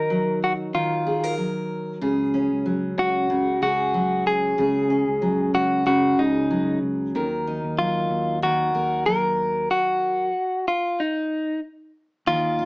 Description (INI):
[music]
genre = acoustic pop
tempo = 94 BPM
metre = 4/4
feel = swing 55% on 16ths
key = Eb minor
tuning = A4 = 441 Hz
[part]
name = direct-recorded clean electric guitar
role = melody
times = 0.0-12.7 s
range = Eb4 to Bb4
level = -21 LUFS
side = equal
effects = none
[part]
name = fingerpicked steel-string acoustic guitar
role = accompaniment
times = 0.0-12.7 s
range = Db3 to Bb4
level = -24 LUFS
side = equal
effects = none
[part]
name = fingered electric bass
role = bass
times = 2.0-12.7 s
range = Db2 to Eb2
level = -33 LUFS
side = equal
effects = none
[sound]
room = moderate studio reverb, RT60 0.8 s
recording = small speaker sound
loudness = -20 LUFS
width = side -28 dB against mid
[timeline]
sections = 0.0-12.3 A section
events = none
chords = 0.0 Ebmadd9; 2.0 Dbsus4; 7.1 Ebm